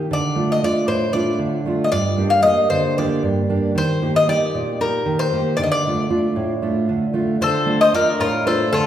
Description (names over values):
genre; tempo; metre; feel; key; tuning
greek folk; 230 BPM (eighths); 7/8; straight; D phrygian; A4 = 440 Hz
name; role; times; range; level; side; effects
fingerpicked steel-string acoustic guitar; accompaniment; 0.0-8.9 s; G2 to G4; -19 LUFS; right 2 dB; none
Greek bouzouki; melody; 0.1-8.9 s; A4 to F5; -19 LUFS; left 2 dB; none
mandolin; second line; 7.4-8.9 s; F4 to C5; -21 LUFS; left 3 dB; none
room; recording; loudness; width
wet recital hall reverb, RT60 1.6 s; recorded in a church or concert hall; -16 LUFS; side -10 dB against mid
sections
0.0-7.4 A section; 7.4-8.9 A section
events
none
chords
0.1 Dm; 1.9 Gm; 3.8 Eb; 5.6 Dm